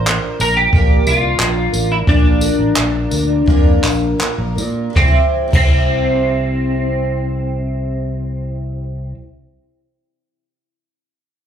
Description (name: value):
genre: acoustic pop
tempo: 78-92 BPM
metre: 4/4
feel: straight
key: C mixolydian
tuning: A4 = 441 Hz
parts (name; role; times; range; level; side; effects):
- twelve-string electric guitar; melody; 0.0-9.1 s; C4 to C5; -18 LUFS; left 2 dB; analog chorus, slapback echo
- picked twelve-string acoustic guitar; accompaniment; 0.0-9.3 s; Bb2 to C5; -22 LUFS; right 2 dB; double-tracked left and right, slapback echo
- fingered electric bass; bass; 0.0-9.1 s; A1 to Bb2; -19 LUFS; equal; none
- jazz brush drum kit; drums; 0.1-5.7 s; crash cymbal, handclaps, kick drum, snare drum, tambourine; -16 LUFS; equal; none
room: small room ambience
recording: live gig heard through the venue's PA, club reverb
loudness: -13 LUFS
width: side -8 dB against mid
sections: 0.0-5.0 A section; 5.0-8.0 B section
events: slowing down 0.0-5.0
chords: 0.0 Bb; 5.0 C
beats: 0.07 0.73 1.40 | 2.08 2.77 3.48 4.20 | 4.96 5.72 6.49 7.25